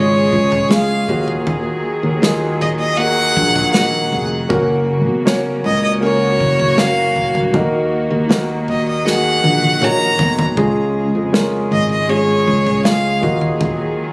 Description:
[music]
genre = pop ballad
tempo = 79 BPM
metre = 4/4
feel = straight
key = Eb minor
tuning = A4 = 440 Hz
[part]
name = clear violin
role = melody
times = 0.0-13.4 s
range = Db5 to Bb5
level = -20 LUFS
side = equal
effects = digital delay
[part]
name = warm grand piano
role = accompaniment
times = 0.0-14.1 s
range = Db3 to Db5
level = -22 LUFS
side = equal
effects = none
[part]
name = warm studio string section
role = sustained chords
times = 0.0-14.1 s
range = Db3 to Ab4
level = -26 LUFS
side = equal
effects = none
[part]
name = sustaining fretless electric bass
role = bass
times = 0.0-13.9 s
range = F1 to F2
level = -22 LUFS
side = equal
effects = lush chorus
[part]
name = impact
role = sound effects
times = 0.0-1.5 s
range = none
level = barely audible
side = none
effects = none
[part]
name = unplugged drum kit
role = drums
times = 0.3-13.8 s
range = kick drum, snare drum, toms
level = -22 LUFS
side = equal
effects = none
[sound]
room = light reverb, small room ambience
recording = recorded on a phone in the room, club ambience, compression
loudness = -16 LUFS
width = mono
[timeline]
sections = 0.0-10.6 A section; 10.6-14.1 A section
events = impact 0.0-1.5; drum fill 9.1-10.6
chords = 0.0 Db; 1.1 Ebmadd9; 4.5 Gb; 7.5 Ebm; 10.6 Db; 13.2 Ebmadd9

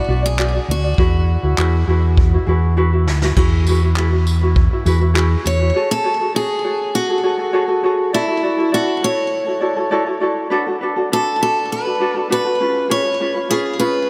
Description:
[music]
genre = acoustic pop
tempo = 101 BPM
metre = 4/4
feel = straight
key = unclear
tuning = A4 = 439 Hz
[part]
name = picked steel-string acoustic guitar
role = melody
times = 0.0-14.1 s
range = E4 to C#5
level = -22 LUFS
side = equal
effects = delay
[part]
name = ukulele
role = accompaniment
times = 0.0-14.1 s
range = C#4 to D5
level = -22 LUFS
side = equal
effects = none
[part]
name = fingered electric bass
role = bass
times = 0.1-5.7 s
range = B1 to E2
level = -18 LUFS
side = equal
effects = none
[part]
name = vintage brush drum kit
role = drums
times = 0.4-5.6 s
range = crash cymbal, handclaps, kick drum, snare drum, tambourine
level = -22 LUFS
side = equal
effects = none
[sound]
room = moderate huge ambient reverb, RT60 4.4 s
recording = dreamy mix soaked in reverb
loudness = -17 LUFS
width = mono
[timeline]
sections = 0.0-3.4 A section; 3.4-5.8 B section; 5.8-14.1 C section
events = drum fill 2.8-3.4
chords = 0.0 Bm; 1.0 Eadd9; 5.8 F#madd9; 8.1 Dadd9; 10.5 Bm7; 12.6 C#7

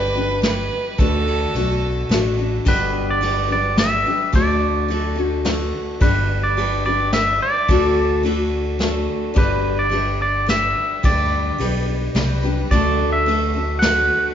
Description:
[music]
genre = honky-tonk and classic country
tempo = 108 BPM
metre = 3/4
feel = straight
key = G major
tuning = A4 = 440 Hz
[part]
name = clear fiddle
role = second line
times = 0.0-2.1 s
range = A4 to B4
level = -24 LUFS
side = right 2 dB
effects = none
[part]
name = picked steel-string acoustic guitar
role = accompaniment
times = 0.0-14.3 s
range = G2 to B4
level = -22 LUFS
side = left 2 dB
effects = none
[part]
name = fingered electric bass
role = bass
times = 0.0-14.1 s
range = G1 to D2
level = -24 LUFS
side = equal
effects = none
[part]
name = vintage brush drum kit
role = drums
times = 0.4-14.0 s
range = crash cymbal, kick drum, ride cymbal, snare drum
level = -23 LUFS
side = equal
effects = none
[part]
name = twangy electric guitar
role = melody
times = 2.7-14.3 s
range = B4 to F#5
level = -20 LUFS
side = right 1 dB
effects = none
[sound]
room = wet recital hall reverb, RT60 1.7 s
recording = recorded in a church or concert hall, nothing above 7.5 kHz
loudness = -16 LUFS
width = side -9 dB against mid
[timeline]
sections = 0.0-2.7 A section; 2.7-14.3 A section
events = fiddle solo 0.0-2.7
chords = 0.0 G; 1.0 D; 2.7 G; 4.3 D; 6.0 G; 7.7 D; 9.4 G; 12.7 D

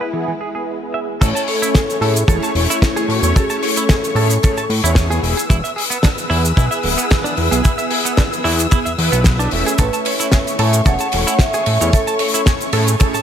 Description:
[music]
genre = nu-disco, nu disco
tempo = 112 BPM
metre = 4/4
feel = swing 53% on 16ths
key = unclear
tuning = A4 = 440 Hz
[part]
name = vibraphone with soft mallets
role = melody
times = 0.0-4.7, 9.8-12.4 s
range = E4 to F#5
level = -23 LUFS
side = equal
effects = ping-pong delay
[part]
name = mellow synth brass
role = accompaniment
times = 0.0-13.2 s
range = A3 to E5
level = -22 LUFS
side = right 1 dB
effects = chorus, phaser, sidechain pumping
[part]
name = dark studio string section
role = sustained chords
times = 0.0-13.2 s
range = G#3 to E6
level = -25 LUFS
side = left 2 dB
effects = sidechain pumping
[part]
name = direct-recorded clean electric guitar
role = riff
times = 0.0-13.2 s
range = E3 to A5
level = -24 LUFS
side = right 3 dB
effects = wide subtle chorus, low-pass filter
[part]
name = fat analog bass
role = bass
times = 1.2-13.2 s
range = D1 to A2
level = -17 LUFS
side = equal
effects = none
[part]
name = damped 70s drum kit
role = drums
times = 1.2-13.2 s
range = cabasa, crash cymbal, hi-hat, ride cymbal, snare drum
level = -21 LUFS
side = left 1 dB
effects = low-pass filter on hats, low-pass filter on cymbals, low-pass filter on snare, low-pass filter on perc, low-pass filter on room, gated reverb
[part]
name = kick drum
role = drums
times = 1.2-13.1 s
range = none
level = -14 LUFS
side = equal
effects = none
[sound]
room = light reverb, studio reverb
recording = bright 1980s-style digital production, faint mains hum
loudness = -14 LUFS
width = side -9 dB against mid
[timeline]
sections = 0.0-1.2 A section; 1.2-13.2 B section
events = filter sweep on string section 0.0-1.2; drop 1.2-13.2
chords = 0.0 E; 1.2 Amaj7; 5.2 E; 9.8 Amaj7

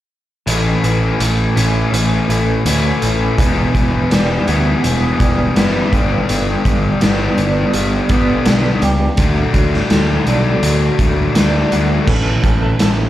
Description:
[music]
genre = quiet-loud alternative rock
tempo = 83 BPM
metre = 4/4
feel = straight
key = unclear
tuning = A4 = 443 Hz
[part]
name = electric guitar through a small old amp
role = arpeggios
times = 0.5-13.1 s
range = E2 to A4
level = -21 LUFS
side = right 3 dB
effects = tremolo, slapback echo
[part]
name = distorted electric guitar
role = riff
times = 0.5-12.1 s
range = G2 to E4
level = -18 LUFS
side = left 5 dB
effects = distortion, slapback echo
[part]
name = fuzz picked electric bass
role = bass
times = 0.5-13.1 s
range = E1 to D2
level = -17 LUFS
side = right 1 dB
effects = overdrive
[part]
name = raw garage drum kit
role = drums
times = 0.5-13.0 s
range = crash cymbal, hi-hat, kick drum, snare drum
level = -18 LUFS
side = equal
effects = none
[sound]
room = little or no reverb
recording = live gig heard through the venue's PA, club reverb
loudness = -12 LUFS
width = side -13 dB against mid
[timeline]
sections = 0.5-12.1 A section; 12.1-13.1 B section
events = none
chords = 0.5 A; 3.4 Em; 5.9 G; 9.2 D; 12.1 A

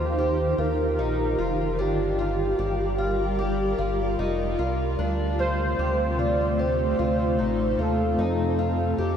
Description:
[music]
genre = dream pop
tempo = 75 BPM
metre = 4/4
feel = straight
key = unclear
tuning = A4 = 436 Hz
[part]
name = warm velvety synth lead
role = melody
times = 0.0-9.2 s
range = G4 to D5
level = -27 LUFS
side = right 1 dB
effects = chorus, ping-pong delay
[part]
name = granular cloud pad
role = sustained chords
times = 0.0-9.2 s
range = C3 to D5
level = -28 LUFS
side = left 1 dB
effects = built-in reverb
[part]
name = fingerpicked twelve-string acoustic guitar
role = arpeggios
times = 0.0-9.2 s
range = D4 to G4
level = -30 LUFS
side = left 2 dB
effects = lush chorus, ping-pong delay
[part]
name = round analog bass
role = bass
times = 0.0-9.2 s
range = F1 to F2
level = -28 LUFS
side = equal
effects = none
[sound]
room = wet huge ambient reverb, RT60 7.7 s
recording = dreamy mix soaked in reverb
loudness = -22 LUFS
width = side -8 dB against mid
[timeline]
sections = 0.0-9.2 A section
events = none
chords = 0.0 Ebadd9; 1.8 Gm7; 5.0 Dm7; 8.2 Fadd9

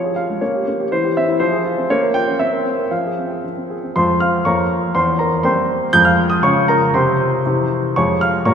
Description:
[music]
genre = classical-period piano sonatina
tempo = 120 BPM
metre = 2/4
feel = straight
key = F minor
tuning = A4 = 440 Hz
[part]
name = warm baby grand piano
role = solo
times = 0.0-8.5 s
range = E2 to G6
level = -14 LUFS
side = equal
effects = none
[sound]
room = wet cathedral reverb, RT60 4.9 s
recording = recorded in a church or concert hall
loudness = -14 LUFS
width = side -7 dB against mid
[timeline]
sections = 0.0-3.9 A section; 3.9-8.5 B section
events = none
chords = 0.4 Gdim/Bb; 0.9 C/E; 1.4 Fm; 1.9 Bbm; 2.4 C7; 2.9 Fm; 4.4 Bbm/F; 4.9 C7/E; 5.9 Fm; 6.4 Db; 6.9 Csus4; 7.4 C; 8.0 Db/F

